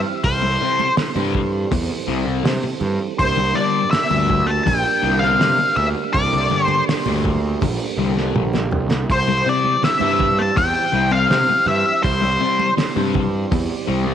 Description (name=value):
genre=psychedelic rock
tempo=81 BPM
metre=4/4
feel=straight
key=C mixolydian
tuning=A4 = 440 Hz
part: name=percussive tonewheel organ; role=sustained chords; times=0.0-14.1 s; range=E3 to D5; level=-27 LUFS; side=right 14 dB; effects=slow rotary speaker
part: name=fuzz picked electric bass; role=bass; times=0.0-14.1 s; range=Bb1 to C3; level=-22 LUFS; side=right 1 dB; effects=overdrive
part: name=octave-fuzz lead guitar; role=melody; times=0.2-12.7 s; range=C5 to A5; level=-18 LUFS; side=left 2 dB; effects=wah, distortion, tape echo
part: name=cloth-damped thuddy drum kit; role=drums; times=0.2-13.7 s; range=hi-hat, kick drum, snare drum, toms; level=-24 LUFS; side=right 1 dB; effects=none
part: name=fuzz guitar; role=riff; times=0.4-14.1 s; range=G2 to C4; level=-23 LUFS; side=left 10 dB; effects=distortion, phaser
part: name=congas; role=percussion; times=0.8-13.3 s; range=none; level=-30 LUFS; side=right 13 dB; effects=none
room=light reverb, small room ambience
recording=1960s-style stereo with parts hard left and right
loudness=-16 LUFS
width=side -9 dB against mid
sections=0.0-14.1 A section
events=drum fill 8.2-9.1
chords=0.0 C; 3.2 Gm; 9.1 C